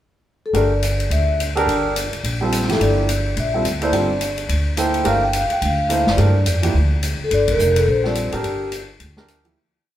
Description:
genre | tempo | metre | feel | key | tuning
modal jazz | 213 BPM | 4/4 | swing 60% on 8ths | G dorian | A4 = 436 Hz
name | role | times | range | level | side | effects
vibraphone with soft mallets | melody | 0.5-8.7 s | G4 to G5 | -21 LUFS | left 1 dB | none
warm grand piano | accompaniment | 0.5-9.6 s | F3 to C5 | -23 LUFS | right 2 dB | none
upright bass | bass | 0.5-9.5 s | F1 to G2 | -20 LUFS | equal | none
swinging big-band drum kit | drums | 0.5-9.5 s | hi-hat, kick drum, ride cymbal, snare drum | -26 LUFS | left 3 dB | none
room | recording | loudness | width
moderate large studio reverb, RT60 1.4 s | band playing live in one room | -16 LUFS | side -12 dB against mid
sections
0.0-0.5 pickup bar; 0.5-9.6 A section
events
band accent 7.4; fade-out 7.8-9.6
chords
0.0 N.C.; 0.5 Gm11

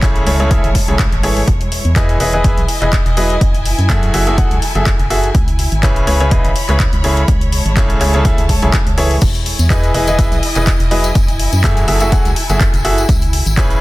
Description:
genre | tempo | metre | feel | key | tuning
piano house | 124 BPM | 4/4 | swing 55% on 16ths | E major | A4 = 440 Hz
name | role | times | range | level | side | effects
bright concert grand piano | riff | 0.0-13.8 s | C#3 to F#5 | -18 LUFS | equal | sidechain pumping, tape echo
organ-like FM bass | bass | 0.0-13.8 s | E1 to F#2 | -17 LUFS | equal | sidechain pumping
electronic kick drum | drums | 0.0-13.7 s | none | -15 LUFS | equal | studio reverb
house drum kit | drums | 0.0-13.8 s | crash cymbal, handclaps, hi-hat | -22 LUFS | left 1 dB | studio reverb
warm studio string section | texture | 0.0-13.8 s | G#3 to B5 | -23 LUFS | equal | sidechain pumping
tambourine | percussion | 9.2-13.8 s | none | -28 LUFS | left 4 dB | none
room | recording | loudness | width
small room ambience | dense, heavily limited modern master | -11 LUFS | side -18 dB against mid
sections
0.0-13.8 A section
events
none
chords
0.0 Amaj7; 1.5 Emaj7; 3.4 F#m9; 5.3 C#m7; 7.0 Amaj7; 9.2 Emaj7; 11.2 F#m9; 13.1 C#m7

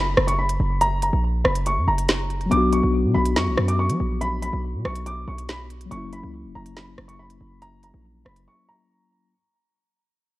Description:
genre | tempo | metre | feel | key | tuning
hip hop, drill | 141 BPM | 4/4 | half-time | unclear | A4 = 441 Hz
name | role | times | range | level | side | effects
warm upright piano | melody | 0.0-9.3 s | A#5 to D6 | -26 LUFS | equal | none
hard-hitting 808-style bass | bass | 0.0-8.5 s | E1 to F#3 | -24 LUFS | equal | none
drill drum kit | drums | 0.2-8.5 s | hi-hat, rim click, snare drum | -23 LUFS | right 1 dB | none
mellow tine electric piano | accompaniment | 2.5-9.3 s | F#3 to F#4 | -25 LUFS | left 4 dB | medium stereo tremolo
room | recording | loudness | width
digital ambience | worn, warbling old tape, cassette tape, warbly pitch drift | -20 LUFS | side -17 dB against mid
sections
0.0-9.3 A section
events
fade-out 0.0-9.3; break 8.5-9.3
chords
0.0 F#; 2.5 Bm; 5.9 F#7

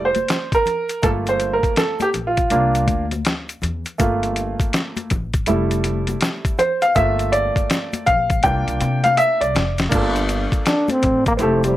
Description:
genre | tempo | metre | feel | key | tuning
hip hop, jazz-hop | 81 BPM | 4/4 | swing 63% on 16ths | G dorian | A4 = 440 Hz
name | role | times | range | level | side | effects
warm upright piano | accompaniment | 0.0-11.8 s | G3 to G5 | -19 LUFS | right 1 dB | plate reverb
upright bass | bass | 0.0-11.8 s | F1 to C3 | -24 LUFS | left 1 dB | none
boom bap sampler-style drum kit | drums | 0.1-11.8 s | crash cymbal, hi-hat, kick drum, snare drum | -21 LUFS | left 1 dB | none
congas and egg shaker | percussion | 0.2-11.8 s | none | -32 LUFS | left 4 dB | none
dark trombone | melody | 10.7-11.8 s | G3 to D4 | -17 LUFS | equal | none
room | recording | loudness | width
light reverb | none | -17 LUFS | side -14 dB against mid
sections
0.0-9.9 A section; 9.9-11.8 A section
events
upright piano solo 0.0-9.9; drum fill 8.4-9.9; trombone solo 9.9-11.8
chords
0.0 F5; 1.0 Gm9; 2.5 C7sus4; 4.0 Gm9; 5.5 Fmaj7; 7.0 Gm9; 8.4 C7sus4; 9.9 Gm9

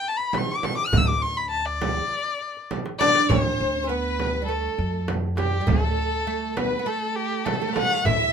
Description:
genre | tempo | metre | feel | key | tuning
Arabic maqam ensemble | 101 BPM | 4/4 | straight | D maqam rast | A4 = 440 Hz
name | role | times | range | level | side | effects
dark violin | melody | 0.0-8.3 s | G4 to F6+47c | -25 LUFS | left 4 dB | none
darbuka | percussion | 0.0-8.2 s | none | -28 LUFS | left 1 dB | none
frame drum | percussion | 0.3-8.2 s | none | -28 LUFS | right 4 dB | none
upright bass | bass | 0.9-8.3 s | D2 to F#2-50c | -28 LUFS | equal | none
oud | second line | 3.0-8.3 s | G3 to E4 | -29 LUFS | right 8 dB | none
rich symphonic violin section | second line | 3.0-8.3 s | G4 to E5 | -30 LUFS | left 1 dB | none
room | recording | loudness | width
moderate studio reverb, RT60 0.5 s | minimal, uncompressed stereo recording | -21 LUFS | side -7 dB against mid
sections
0.0-3.3 A section; 3.3-8.3 B section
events
drum fill 2.7-3.3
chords
none

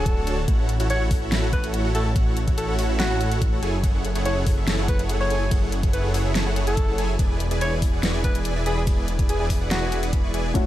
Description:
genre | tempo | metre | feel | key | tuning
future bass | 143 BPM | 4/4 | half-time | unclear | A4 = 439 Hz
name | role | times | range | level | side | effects
warm alto saxophone | melody | 0.0-10.0 s | F#4 to C#5 | -30 LUFS | left 1 dB | sidechain pumping, tape echo
supersaw chords | riff | 0.0-10.7 s | D4 to C#6 | -28 LUFS | right 1 dB | cassette tape, sidechain pumping
wide detuned saw bass | bass | 0.0-10.7 s | D1 to A1 | -24 LUFS | equal | chorus, sidechain pumping
dubstep drum kit | drums | 0.1-10.6 s | hi-hat, ride cymbal, snare drum | -29 LUFS | equal | overdrive, small room ambience
electronic kick drum | drums | 0.1-10.6 s | none | -22 LUFS | equal | overdrive, small room ambience
felt-muted upright piano | accompaniment | 10.5-10.7 s | A3 to F#4 | -24 LUFS | left 7 dB | sidechain pumping
room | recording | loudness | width
little or no reverb | none | -20 LUFS | side -14 dB against mid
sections
0.0-10.7 A section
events
none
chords
0.5 A6; 3.6 F#m9; 7.2 E7

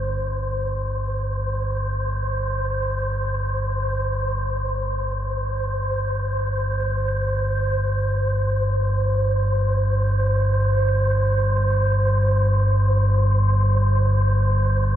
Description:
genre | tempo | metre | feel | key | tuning
dark ambient drone | free time | none | none | unclear | A4 = 440 Hz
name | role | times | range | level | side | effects
deep rumbling drone | drone | 0.0-15.0 s | G1 to G2 | -20 LUFS | equal | built-in reverb, wide subtle chorus
wind-like tuned noise texture | texture | 0.0-15.0 s | C5 | -25 LUFS | equal | built-in reverb
room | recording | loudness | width
wet cathedral reverb, RT60 7.5 s | none | -19 LUFS | side -11 dB against mid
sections
0.2-15.0 A section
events
none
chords
0.2 Gsus4

